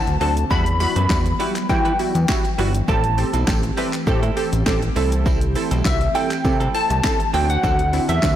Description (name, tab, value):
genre	dance-pop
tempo	101 BPM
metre	4/4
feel	straight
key	E minor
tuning	A4 = 442 Hz
part	glassy wavetable pluck	melody	0.0-8.4 s	E5 to B5	-23 LUFS	left 1 dB	chorus, tape echo
part	funky polysynth comp	accompaniment	0.0-8.4 s	G3 to B4	-26 LUFS	right 2 dB	chorus, sidechain pumping
part	airy breathy pad	sustained chords	0.0-8.4 s	D3 to G4	-30 LUFS	equal	chorus, sidechain pumping
part	direct-recorded clean electric guitar	riff	0.1-8.3 s	F#3 to B4	-31 LUFS	right 6 dB	wide subtle chorus
part	fat analog bass	bass	0.1-8.4 s	G1 to E3	-20 LUFS	equal	sidechain pumping
part	deep house drum kit	drums	0.1-8.4 s	handclaps, hi-hat, kick drum, shaker, snare drum	-22 LUFS	equal	soft clipping on snare
part	tambourine	percussion	0.2-8.4 s	none	-41 LUFS	left 4 dB	none
room	light reverb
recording	blown-out, overdriven recording, overdrive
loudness	-17 LUFS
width	side -11 dB against mid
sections	0.0-8.4 A section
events	none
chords	0.0 D7; 0.5 Emadd9; 2.9 Am7; 5.0 C6; 7.3 D7